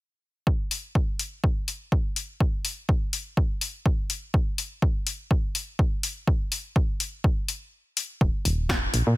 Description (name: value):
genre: piano house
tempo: 124 BPM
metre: 4/4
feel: swing 56% on 16ths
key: unclear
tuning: A4 = 438 Hz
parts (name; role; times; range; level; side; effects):
- electronic kick drum; drums; 0.5-8.8 s; none; -23 LUFS; equal; none
- punchy analog drum machine; drums; 0.7-9.0 s; hi-hat, snare drum; -28 LUFS; left 4 dB; none
- solid FM bass; bass; 8.2-9.1 s; Eb1 to Bb2; -23 LUFS; equal; sidechain pumping
room: digital ambience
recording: none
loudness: -24 LUFS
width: side -19 dB against mid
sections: 0.5-8.2 A section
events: break 7.7-8.2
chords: none